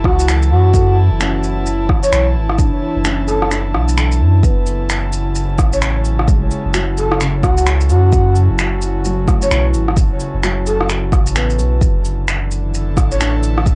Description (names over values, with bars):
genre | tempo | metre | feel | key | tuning
future garage | 130 BPM | 4/4 | swing 61% on 16ths | F# minor | A4 = 440 Hz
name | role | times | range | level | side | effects
breathy flute-like synth lead | melody | 0.0-13.4 s | F#4 to C#5 | -22 LUFS | equal | subtle chorus, cassette tape, tape echo
felt-muted upright piano | accompaniment | 0.0-13.8 s | C#3 to A4 | -28 LUFS | equal | sidechain pumping, cassette tape, tape echo
airy breathy pad | sustained chords | 0.0-13.8 s | C#3 to A5 | -26 LUFS | equal | chorus, sidechain pumping, cassette tape
soft dub sub bass | bass | 0.0-13.8 s | F#1 to F#2 | -18 LUFS | equal | tube saturation, sidechain pumping
electronic kick drum | drums | 0.0-13.8 s | none | -17 LUFS | equal | cassette tape
electronic rim click, shaker, finger snaps and cabasa | drums | 0.1-13.8 s | none | -23 LUFS | equal | cassette tape
room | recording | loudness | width
light reverb | home recording on cassette, nothing above 10.8 kHz | -15 LUFS | mono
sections
0.0-13.8 A section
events
kick drops out 3.5-4.4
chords
0.0 Dsus2/F#; 4.4 F#m7; 11.8 Dsus2/F#